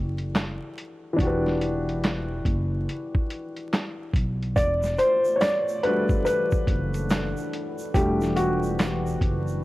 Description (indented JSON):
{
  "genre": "lo-fi hip hop",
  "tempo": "71 BPM",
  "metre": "4/4",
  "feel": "swing 62% on 16ths",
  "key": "E minor",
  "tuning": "A4 = 440 Hz",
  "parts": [
    { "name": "dark upright piano", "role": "accompaniment", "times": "0.0-9.6 s", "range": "E3 to D5", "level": "-25 LUFS", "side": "left 1 dB", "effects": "cassette tape, low-pass filter" },
    { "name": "upright bass", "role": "bass", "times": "0.0-9.6 s", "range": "E1 to B1", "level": "-29 LUFS", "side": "equal", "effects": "tube saturation" },
    { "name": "lo-fi sampler-style drum kit", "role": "drums", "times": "0.2-9.5 s", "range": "handclaps, hi-hat, kick drum, snare drum", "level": "-25 LUFS", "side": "equal", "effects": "none" },
    { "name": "deep dark ambient pad", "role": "sustained chords", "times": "5.8-9.6 s", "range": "E3 to F#5", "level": "-32 LUFS", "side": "right 1 dB", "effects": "chorus, built-in reverb, low-pass filter" },
    { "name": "egg shaker", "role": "percussion", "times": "4.6-9.6 s", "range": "none", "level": "-49 LUFS", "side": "right 5 dB", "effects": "none" }
  ],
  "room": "light reverb, small room reverb",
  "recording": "dry, gritty hardware recording, vinyl crackle",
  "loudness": "-22 LUFS",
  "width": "side -17 dB against mid",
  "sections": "0.0-4.6 A section; 4.6-9.6 A section",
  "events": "upright piano solo 4.6-9.6",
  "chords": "0.0 Em11"
}